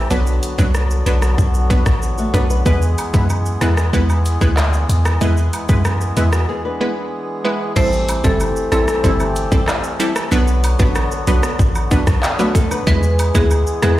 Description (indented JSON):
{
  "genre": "dancehall",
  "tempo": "94 BPM",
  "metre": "4/4",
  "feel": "straight",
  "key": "unclear",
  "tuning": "A4 = 440 Hz",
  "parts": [
    { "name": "hand-pumped harmonium", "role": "sustained chords", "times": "0.0-14.0 s", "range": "D3 to G#4", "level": "-25 LUFS", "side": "left 1 dB", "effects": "sidechain pumping" },
    { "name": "warm 808-style bass", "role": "bass", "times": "0.0-14.0 s", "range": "G1 to F#2", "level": "-17 LUFS", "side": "equal", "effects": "none" },
    { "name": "punchy chord stab", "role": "accompaniment", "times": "0.1-14.0 s", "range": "F#3 to B4", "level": "-21 LUFS", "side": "right 1 dB", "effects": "chorus" },
    { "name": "island pop drum kit", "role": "drums", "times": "0.1-14.0 s", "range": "crash cymbal, handclaps, hi-hat, kick drum, rim click, shaker", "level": "-19 LUFS", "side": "equal", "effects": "none" },
    { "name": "nylon-string guitar", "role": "arpeggios", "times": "2.2-7.6, 12.4-13.0 s", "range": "A3 to B4", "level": "-24 LUFS", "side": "left 2 dB", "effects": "none" },
    { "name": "cabasa and woodblock", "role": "percussion", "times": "3.0-14.0 s", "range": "none", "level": "-30 LUFS", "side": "right 2 dB", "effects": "none" },
    { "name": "marimba with medium hard mallets", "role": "melody", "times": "7.8-8.8, 12.9-13.9 s", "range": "G#4 to C5", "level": "-21 LUFS", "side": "equal", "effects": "tape echo" }
  ],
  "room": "light reverb, small room ambience",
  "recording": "played on a big sound system in a bare room, large studio reverb",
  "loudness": "-14 LUFS",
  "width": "side -15 dB against mid",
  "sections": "0.0-7.8 A section; 7.8-14.0 B section",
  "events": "break 6.5-7.8",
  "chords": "0.1 Bm; 2.7 E; 7.8 Am7; 10.3 Bm; 12.9 E"
}